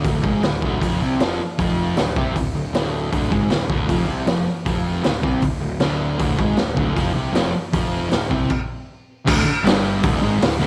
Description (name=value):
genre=garage rock duo or trio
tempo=156 BPM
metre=4/4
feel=straight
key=unclear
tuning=A4 = 440 Hz
part: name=fuzz guitar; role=riff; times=0.0-10.7 s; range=D2 to C4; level=-24 LUFS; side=equal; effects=distortion
part: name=fuzz picked electric bass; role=bass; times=0.0-10.7 s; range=D1 to C2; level=-28 LUFS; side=equal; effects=overdrive
part: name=raw garage drum kit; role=drums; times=0.0-10.5 s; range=crash cymbal, hi-hat, kick drum, snare drum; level=-24 LUFS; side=equal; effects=none
room=moderate echo chamber reverb, RT60 1.6 s, studio ambience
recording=none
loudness=-20 LUFS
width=mono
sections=0.0-9.3 A section; 9.3-10.7 B section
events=stop 8.5-9.3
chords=0.0 Dm7b5; 9.3 D5